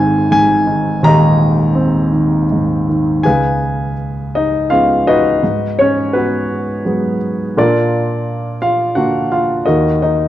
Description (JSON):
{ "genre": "classical, lyrical solo piano", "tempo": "84 BPM", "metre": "3/4", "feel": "rubato", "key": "unclear", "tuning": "A4 = 440 Hz", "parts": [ { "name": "warm grand piano", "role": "solo", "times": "0.0-10.3 s", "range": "Eb1 to Bb5", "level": "-12 LUFS", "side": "equal", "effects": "none" } ], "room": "moderate recital hall reverb, RT60 1.4 s", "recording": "dark, warm production", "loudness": "-12 LUFS", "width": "side -13 dB against mid", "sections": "0.0-3.2 A section; 3.2-10.3 B section", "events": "none", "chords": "0.0 Abadd9; 3.2 Db7; 5.4 Abm7; 7.6 Bb; 9.7 Ebm" }